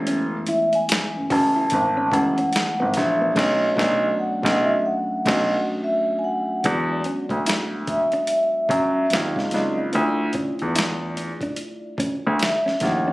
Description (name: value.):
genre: R&B, neo-soul.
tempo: 73 BPM.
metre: 4/4.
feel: swing 62% on 16ths.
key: unclear.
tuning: A4 = 440 Hz.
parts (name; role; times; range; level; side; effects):
hollow-body jazz guitar; second line; 0.0-13.1 s; B3 to F#4; -29 LUFS; right 1 dB; none.
reed electric piano; accompaniment; 0.0-13.1 s; E3 to F#4; -28 LUFS; left 1 dB; none.
warm grand piano; bass; 0.0-13.1 s; F#1 to F#2; -22 LUFS; equal; none.
boom bap sampler-style drum kit; drums; 0.1-13.0 s; crash cymbal, hi-hat, kick drum, snare drum; -26 LUFS; equal; none.
vibraphone with medium mallets; melody; 0.5-13.1 s; C#5 to A5; -23 LUFS; equal; none.
room: little or no reverb.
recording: recorded on a phone in the room, studio reverb.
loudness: -19 LUFS.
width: side -20 dB against mid.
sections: 0.0-6.6 A section; 6.6-13.1 B section.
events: band accent 3.4-6.6.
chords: 0.0 F#m11; 3.4 Bm9; 6.6 E9; 9.1 D#madd9; 9.9 Dmadd9.